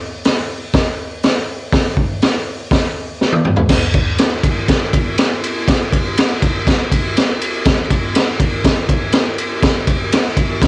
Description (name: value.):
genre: rock.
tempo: 121 BPM.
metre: 4/4.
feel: straight.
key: none.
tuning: none.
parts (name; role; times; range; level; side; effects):
raw garage drum kit; drums; 0.2-10.7 s; crash cymbal, hi-hat, kick drum, ride cymbal, snare drum, toms; -13 LUFS; equal; cassette tape.
room: light reverb.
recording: home recording on cassette.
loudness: -13 LUFS.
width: side -30 dB against mid.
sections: 0.0-3.7 A section; 3.7-10.7 B section.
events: drum fill 3.2-3.7.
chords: none.